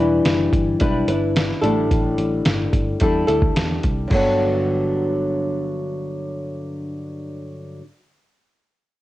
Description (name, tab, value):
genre	indie pop, bedroom pop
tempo	109 BPM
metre	4/4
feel	straight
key	G major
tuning	A4 = 440 Hz
part	flamenco guitar	accompaniment	0.0-7.8 s	G2 to B4	-20 LUFS	left 1 dB	wide subtle chorus, warbly pitch drift
part	vintage muted picked electric bass	bass	0.0-7.8 s	E1 to E2	-26 LUFS	equal	none
part	lo-fi sampler-style drum kit	drums	0.3-4.2 s	crash cymbal, hi-hat, kick drum, snare drum	-21 LUFS	equal	vintage 12-bit sampler grit, cassette tape
room	light reverb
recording	home recording on cassette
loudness	-18 LUFS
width	side -16 dB against mid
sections	0.0-4.1 A section; 4.1-6.3 B section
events	none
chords	0.0 Em7; 1.6 A7sus4; 4.1 Gmaj7